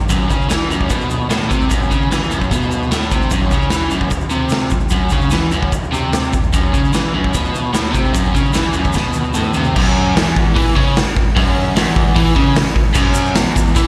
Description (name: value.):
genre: garage rock duo or trio.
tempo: 150 BPM.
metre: 4/4.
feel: straight.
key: unclear.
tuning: A4 = 440 Hz.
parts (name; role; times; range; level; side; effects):
overdriven electric guitar; riff; 0.0-13.9 s; E2 to E3; -19 LUFS; equal; none.
tube shaker; percussion; 0.0-9.7, 12.9-13.8 s; none; -34 LUFS; equal; none.
raw garage drum kit; drums; 0.1-13.9 s; crash cymbal, hi-hat, kick drum, snare drum, toms; -18 LUFS; equal; none.
room: little or no reverb.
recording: live gig heard through the venue's PA, recital hall reverb.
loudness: -16 LUFS.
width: mono.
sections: 0.0-9.7 A section; 9.7-13.9 B section.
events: drum fill 8.9-9.7.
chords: none.